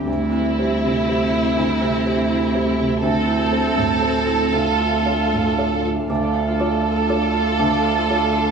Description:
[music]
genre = neoclassical piano and strings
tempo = 120 BPM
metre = 3/4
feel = rubato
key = D minor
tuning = A4 = 440 Hz
[part]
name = felt-muted upright piano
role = accompaniment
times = 0.0-8.5 s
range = D2 to D5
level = -23 LUFS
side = equal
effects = none
[part]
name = ethereal airy pad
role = sustained chords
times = 0.0-8.5 s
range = C4 to F5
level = -28 LUFS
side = left 2 dB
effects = ensemble chorus, built-in reverb
[part]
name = warm double bass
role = bass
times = 0.0-8.5 s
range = D2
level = -22 LUFS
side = right 2 dB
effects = none
[part]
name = rich chamber violin section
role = melody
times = 0.1-8.5 s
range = E4 to A4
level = -22 LUFS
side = right 2 dB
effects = none
[part]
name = rich viola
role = accompaniment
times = 0.1-8.5 s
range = C4 to F4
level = -27 LUFS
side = right 6 dB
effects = none
[part]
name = Celtic harp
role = arpeggios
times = 6.1-8.5 s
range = D4 to D5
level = -27 LUFS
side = right 2 dB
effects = tape echo
[sound]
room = moderate spring reverb, RT60 1.2 s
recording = heard from further back in the room, studio reverb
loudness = -17 LUFS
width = side -6 dB against mid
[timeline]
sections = 0.0-6.1 A section; 6.1-8.5 B section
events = none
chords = 0.1 C/D; 3.0 Am/D; 4.5 Dm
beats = | 0.07 0.57 1.07 | 1.56 2.06 2.54 | 3.04 3.53 4.03 | 4.55 5.07 5.58 | 6.09 6.60 7.10 | 7.60 8.10

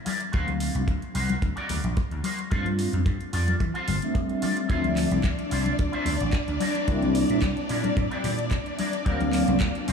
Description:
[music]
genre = nu-disco, nu disco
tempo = 110 BPM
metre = 4/4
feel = swing 53% on 16ths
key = D minor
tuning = A4 = 441 Hz
[part]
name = electric guitar with an envelope filter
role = riff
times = 0.1-9.9 s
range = C4 to D5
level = -33 LUFS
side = equal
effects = analog chorus, analog delay
[part]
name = house drum kit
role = drums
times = 0.1-9.9 s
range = handclaps, hi-hat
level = -37 LUFS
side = right 2 dB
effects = studio reverb
[part]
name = congas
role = percussion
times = 0.1-9.7 s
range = none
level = -33 LUFS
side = left 6 dB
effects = none
[part]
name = mellow synth brass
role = accompaniment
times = 0.3-9.5 s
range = F3 to E#5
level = -28 LUFS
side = equal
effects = chorus, sidechain pumping, analog delay
[part]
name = vintage slap bass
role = bass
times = 0.3-9.9 s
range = G1 to E3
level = -28 LUFS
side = equal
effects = none
[part]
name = kick drum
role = drums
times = 0.3-9.7 s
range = none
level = -26 LUFS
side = equal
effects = studio reverb
[part]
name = warm studio string section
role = sustained chords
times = 4.7-9.9 s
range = D4 to D5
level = -30 LUFS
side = left 2 dB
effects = sidechain pumping
[sound]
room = moderate cathedral reverb, RT60 6.3 s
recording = dreamy mix soaked in reverb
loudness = -23 LUFS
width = side -6 dB against mid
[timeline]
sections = 0.0-9.9 A section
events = filter sweep on analog polysynth 0.0-9.9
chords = 0.3 D7alt; 2.5 G9sus4; 4.7 Dm9; 6.6 C9; 9.1 D7alt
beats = | 0.33 0.88 1.42 1.97 | 2.52 3.06 3.61 4.15 | 4.70 5.24 5.79 6.33 | 6.88 7.42 7.97 8.52 | 9.06 9.61

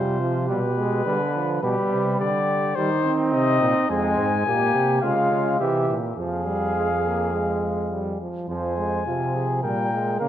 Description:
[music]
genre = classical, imitative canzona for brass ensemble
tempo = 105 BPM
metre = 4/4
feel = straight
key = C minor, F minor from 3.9 s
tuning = A4 = 440 Hz
[part]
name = mellow cornet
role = melody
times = 0.0-10.3 s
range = G4 to Ab5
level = -26 LUFS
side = left 6 dB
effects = none
[part]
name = dark trumpet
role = second line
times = 0.0-10.3 s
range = C4 to C5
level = -27 LUFS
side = right 3 dB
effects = none
[part]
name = bright trombone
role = accompaniment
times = 0.0-10.3 s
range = E3 to C4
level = -26 LUFS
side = right 1 dB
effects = none
[part]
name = clear bass trombone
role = bass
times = 0.0-10.3 s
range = F2 to Eb3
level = -27 LUFS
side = right 1 dB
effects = none
[sound]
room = wet scoring stage reverb, RT60 1.6 s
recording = worn, warbling old tape, cassette tape, warbly pitch drift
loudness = -20 LUFS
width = side -11 dB against mid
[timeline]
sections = 0.0-8.5 A section; 8.5-10.3 B section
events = none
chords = 0.5 G/B; 2.8 Cm/Eb; 3.9 Fm; 5.0 Db; 5.6 C; 6.2 Fm; 9.6 Gm/Bb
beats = 0.48 1.05 | 1.62 2.19 2.76 3.33 | 3.89 4.46 5.03 5.60 | 6.17 6.75 7.33 7.91 | 8.49 9.06 9.63 10.20

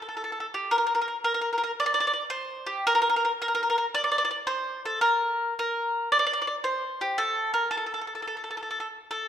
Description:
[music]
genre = italian folk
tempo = 112 BPM (dotted quarters)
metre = 6/8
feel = rubato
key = Bb major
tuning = A4 = 440 Hz
[part]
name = bowl-back mandolin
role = solo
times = 0.0-9.3 s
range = G4 to D5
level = -24 LUFS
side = equal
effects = none
[sound]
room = moderate recital hall reverb, RT60 1.8 s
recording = minimal, uncompressed stereo recording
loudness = -24 LUFS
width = side -9 dB against mid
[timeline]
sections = 0.7-9.3 A section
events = none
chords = none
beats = 0.17 | 0.72 1.26 | 1.79 2.33 | 2.86 3.40 | 3.93 4.47 | 5.02 5.57 | 6.11 6.64 | 7.17 7.70 | 8.22 8.76

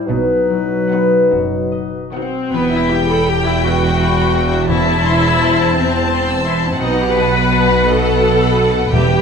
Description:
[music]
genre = classical, slow romantic movement for symphony orchestra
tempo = 47-58 BPM (dotted quarters)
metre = 6/8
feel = rubato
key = E minor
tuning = A4 = 441 Hz
[part]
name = warm French horn section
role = sustained chords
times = 0.0-2.2 s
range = F#3 to D#4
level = -21 LUFS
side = left 6 dB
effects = none
[part]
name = concert harp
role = arpeggios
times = 0.0-9.2 s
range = A2 to C6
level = -20 LUFS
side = left 4 dB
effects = none
[part]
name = mellow clarinet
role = second line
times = 0.1-2.1 s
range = B4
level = -20 LUFS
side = right 2 dB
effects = none
[part]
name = rich chamber cello section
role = bass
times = 0.1-9.2 s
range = E2 to B2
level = -21 LUFS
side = right 3 dB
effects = none
[part]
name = rich chamber double bass section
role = bass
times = 0.1-9.2 s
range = E1 to B1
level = -21 LUFS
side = right 4 dB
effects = none
[part]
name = rich studio violin section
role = melody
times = 0.9-9.2 s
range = F#5 to A5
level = -23 LUFS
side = left 3 dB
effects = none
[part]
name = rich chamber violin section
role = second line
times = 0.9-9.2 s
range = B3 to E6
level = -23 LUFS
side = left 2 dB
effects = none
[part]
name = rich chamber viola section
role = accompaniment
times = 0.9-9.2 s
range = D#3 to B4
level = -17 LUFS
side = left 2 dB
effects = none
[part]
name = timpani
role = percussion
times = 4.7-9.2 s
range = E2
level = -20 LUFS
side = right 1 dB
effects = none
[sound]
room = moderate scoring stage reverb, RT60 1.8 s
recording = minimal, uncompressed stereo recording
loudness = -12 LUFS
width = side -6 dB against mid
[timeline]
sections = 0.0-2.5 A section; 2.5-9.2 B section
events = none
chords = 0.1 B; 2.5 Em; 4.7 Am/E; 6.8 B7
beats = | 0.09 1.32 | 2.53 3.63 | 4.69 5.76 | 6.80 7.87 | 8.92

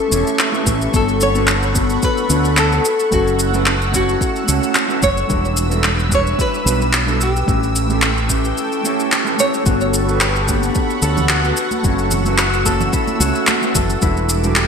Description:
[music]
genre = sunset chillout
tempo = 110 BPM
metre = 4/4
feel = swing 54% on 16ths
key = unclear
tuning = A4 = 440 Hz
[part]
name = nylon-string guitar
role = melody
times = 0.0-9.6 s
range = F#4 to C#5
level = -21 LUFS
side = left 1 dB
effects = digital delay
[part]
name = mellow electric guitar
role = accompaniment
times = 0.0-14.6 s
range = G3 to F#5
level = -21 LUFS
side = moving between left 4 dB and right 6 dB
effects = auto-pan, digital delay
[part]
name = lush unison pad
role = sustained chords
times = 0.0-14.7 s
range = A4 to E6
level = -24 LUFS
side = right 1 dB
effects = chorus, phaser
[part]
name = fingered electric bass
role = bass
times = 0.1-14.7 s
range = E1 to D2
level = -19 LUFS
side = equal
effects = none
[part]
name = electronic shaker and handclaps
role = drums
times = 0.1-14.7 s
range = none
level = -20 LUFS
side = equal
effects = small room ambience, gated reverb
[part]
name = electronic kick drum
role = drums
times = 0.7-14.1 s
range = none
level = -21 LUFS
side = equal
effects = small room ambience
[part]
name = concert harp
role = arpeggios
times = 9.7-14.7 s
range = E4 to A4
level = -23 LUFS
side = left 4 dB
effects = digital delay
[part]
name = congas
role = percussion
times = 10.5-13.9 s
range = none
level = -27 LUFS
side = right 6 dB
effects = none
[sound]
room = moderate lush hall reverb, RT60 2.1 s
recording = bright 1980s-style digital production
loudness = -14 LUFS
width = side -6 dB against mid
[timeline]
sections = 0.0-14.7 A section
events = none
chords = 0.0 A7; 0.9 Gmaj9#11; 2.8 F#m7; 5.3 Em7; 7.5 A7; 9.7 Gmaj9#11; 11.6 F#m7; 14.0 Em7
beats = 0.39 | 0.93 1.48 2.02 2.57 | 3.11 3.66 4.21 4.75 | 5.30 5.84 6.39 6.93 | 7.48 8.02 8.57 9.11 | 9.66 10.21 10.75 11.30 | 11.84 12.39 12.93 13.48 | 14.02 14.57

